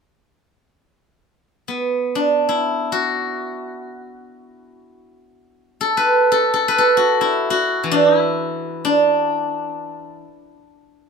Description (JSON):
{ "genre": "chinese traditional, Chinese solo plucked strings", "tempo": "free time", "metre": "none", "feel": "none", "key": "D gong mode", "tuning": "A4 = 440 Hz", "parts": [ { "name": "steel-string zither", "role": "solo", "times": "1.7-11.1 s", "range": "E3 to B4", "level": "-16 LUFS", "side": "equal", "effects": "none" } ], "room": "light reverb", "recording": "close, detailed microphones", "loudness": "-16 LUFS", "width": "side -5 dB against mid", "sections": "0.9-11.1 A section", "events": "none", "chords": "none", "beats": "free time" }